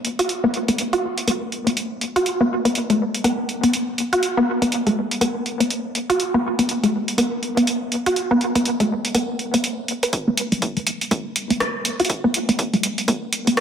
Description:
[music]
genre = minimal techno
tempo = 122 BPM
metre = 4/4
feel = swing 60% on 16ths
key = unclear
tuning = A4 = 439 Hz
[part]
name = punchy analog drum machine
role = drums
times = 0.0-13.6 s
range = hi-hat, rim click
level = -24 LUFS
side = right 1 dB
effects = none
[part]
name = resonant blip pluck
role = riff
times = 0.2-13.5 s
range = A3 to B4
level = -20 LUFS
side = equal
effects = chorus, cassette tape, sidechain pumping, analog delay
[part]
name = electronic kick drum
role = drums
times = 10.1-13.6 s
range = none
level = -27 LUFS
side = equal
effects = high-pass filter on kick
[sound]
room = wet plate reverb, RT60 1.8 s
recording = dreamy mix soaked in reverb, high-pass filter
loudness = -19 LUFS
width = side -8 dB against mid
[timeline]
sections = 0.0-10.1 A section; 10.1-13.6 B section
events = build-up 10.1-13.6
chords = none

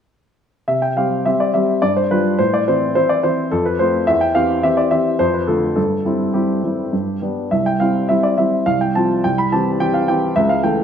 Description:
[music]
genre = classical-period piano sonatina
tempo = 106 BPM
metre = 3/4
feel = rubato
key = C major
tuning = A4 = 439 Hz
[part]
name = warm baby grand piano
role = solo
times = 0.7-10.8 s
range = C2 to B5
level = -15 LUFS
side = equal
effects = none
[sound]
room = wet recital hall reverb, RT60 1.6 s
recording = none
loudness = -15 LUFS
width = side -8 dB against mid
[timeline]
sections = 0.7-10.8 A section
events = none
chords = 0.7 C5; 1.8 G7; 2.4 Am; 3.5 F; 4.1 C/E; 5.2 Dm/F; 5.8 C/G; 6.9 G; 7.5 C; 8.7 F/C; 9.2 C

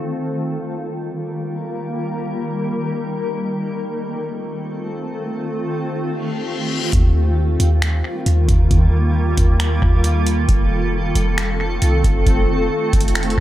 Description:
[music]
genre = hip hop, atmospheric cloud-rap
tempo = 135 BPM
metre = 4/4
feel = half-time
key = Eb lydian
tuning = A4 = 440 Hz
[part]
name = granular cloud pad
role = sustained chords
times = 0.0-13.4 s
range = Eb3 to Bb4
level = -21 LUFS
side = equal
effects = built-in reverb, sidechain pumping, low-pass filter
[part]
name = reverse cymbal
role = sound effects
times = 6.2-6.9 s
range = none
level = -27 LUFS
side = left 7 dB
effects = none
[part]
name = clean 808-style bass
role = bass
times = 6.9-13.4 s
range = F1 to Eb2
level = -17 LUFS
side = equal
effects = none
[part]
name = booming analog drum machine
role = drums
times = 6.9-13.4 s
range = finger snaps, hi-hat, kick drum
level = -18 LUFS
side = equal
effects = none
[sound]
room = light reverb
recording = echo-heavy mix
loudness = -17 LUFS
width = side -14 dB against mid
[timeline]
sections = 0.0-6.9 A section; 6.9-13.4 B section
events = filter sweep on ambient pad 0.0-6.9; reverse cymbal 6.2-6.9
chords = 0.0 Ebadd9; 3.4 F7; 6.9 Ebadd9; 10.5 F7

